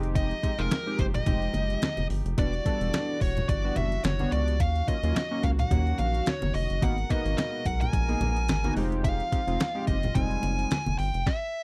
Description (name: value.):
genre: early-eighties boogie funk.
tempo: 108 BPM.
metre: 4/4.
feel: swing 56% on 16ths.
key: unclear.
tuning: A4 = 441 Hz.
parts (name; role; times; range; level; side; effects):
chorused polysynth; accompaniment; 0.0-10.8 s; Gb3 to A4; -35 LUFS; equal; none.
mellow brass ensemble; sustained chords; 0.0-11.2 s; Cb3 to Bb4; -42 LUFS; equal; none.
rubbery square bass; bass; 0.0-11.2 s; E1 to Eb2; -31 LUFS; equal; none.
detuned 8-bit digital drum machine; drums; 0.0-11.4 s; hi-hat, kick drum, snare drum; -31 LUFS; equal; none.
nasal lead guitar with a parked wah; melody; 0.2-11.6 s; Bb4 to Ab5; -34 LUFS; equal; overdrive, slapback echo.
congas; percussion; 0.2-11.0 s; none; -36 LUFS; equal; none.
room: little or no reverb.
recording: dry, close 1970s-style studio recording.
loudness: -27 LUFS.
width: mono.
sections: 0.0-11.6 A section.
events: none.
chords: 0.0 Fm9; 2.4 Em9; 4.6 Ebm9; 6.8 Abm9; 8.8 Fm9.